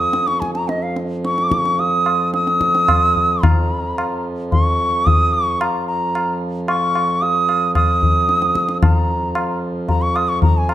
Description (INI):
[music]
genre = indian classical, Hindustani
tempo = 111 BPM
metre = 5/4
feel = straight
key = unclear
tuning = A4 = 441 Hz
[part]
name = bright bansuri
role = melody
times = 0.0-10.7 s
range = Eb5 to Eb6+24c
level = -17 LUFS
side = right 1 dB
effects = none
[part]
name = pedal harmonium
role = drone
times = 0.0-10.7 s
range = F2 to F3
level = -24 LUFS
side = right 1 dB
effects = none
[part]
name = tabla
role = percussion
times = 0.1-10.7 s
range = none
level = -19 LUFS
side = left 1 dB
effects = none
[sound]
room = moderate recital hall reverb, RT60 1.5 s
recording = dark, warm production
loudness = -15 LUFS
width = side -13 dB against mid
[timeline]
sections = 0.0-10.7 A section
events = speeding up 0.0-10.7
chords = none